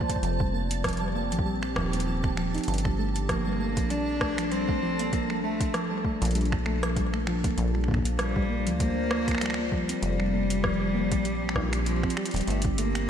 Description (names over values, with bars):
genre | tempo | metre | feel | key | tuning
IDM | 98 BPM | 4/4 | swing 56% on 16ths | G minor | A4 = 440 Hz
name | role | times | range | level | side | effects
warbly tape-like pad | sustained chords | 0.0-13.1 s | F3 to D5 | -34 LUFS | left 1 dB | chorus, built-in reverb, vintage 12-bit sampler grit
soft round pluck | arpeggios | 0.0-12.9 s | F3 to G4 | -32 LUFS | right 1 dB | chorus, cassette tape, tape echo
deep acid bass | bass | 0.0-13.1 s | Eb1 to D2 | -30 LUFS | equal | none
electronic kick drum | drums | 0.0-12.8 s | none | -29 LUFS | equal | overdrive
pulsing gated texture | texture | 0.0-12.5 s | A5 | -40 LUFS | right 6 dB | chorus, built-in reverb
electro analog drum machine | drums | 0.1-13.1 s | finger snaps, hi-hat, rim click | -34 LUFS | equal | ping-pong delay
warm cello | melody | 3.3-13.1 s | F3 to D4 | -31 LUFS | left 1 dB | ping-pong delay
room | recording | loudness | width
moderate lush hall reverb, RT60 2.9 s | dreamy mix soaked in reverb | -25 LUFS | side -8 dB against mid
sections
0.0-12.5 A section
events
drum fill 12.2-12.5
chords
0.2 F9sus4; 2.7 Gm9; 7.6 Bb69; 10.0 Fsus4; 12.5 Gm9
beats
| 0.23 0.84 1.46 2.07 | 2.68 3.29 3.90 4.52 | 5.13 5.74 6.35 6.96 | 7.58 8.19 8.80 9.41 | 10.03 10.64 11.25 11.86 | 12.47 13.09